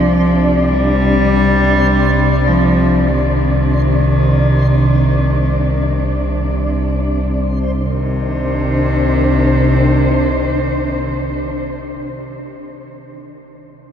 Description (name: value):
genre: dark ambient drone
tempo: free time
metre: none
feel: none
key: C minor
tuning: A4 = 440 Hz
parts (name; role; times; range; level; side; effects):
- rich cello; melody; 0.0-11.4 s; C3 to G3; -18 LUFS; equal; tape echo
- dark symphonic cello section; sustained chords; 0.0-11.8 s; C3 to D5; -18 LUFS; equal; shimmer reverb
- analog drone; drone; 0.0-11.4 s; C2 to C3; -16 LUFS; equal; wide subtle chorus
- backwards swelling texture; texture; 0.0-7.9 s; C5; -30 LUFS; equal; built-in reverb, shimmer reverb
room: wet huge ambient reverb, RT60 7.5 s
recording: none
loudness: -12 LUFS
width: side -8 dB against mid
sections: 0.0-7.9 A section; 7.9-12.7 B section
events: none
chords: 0.0 Cmadd9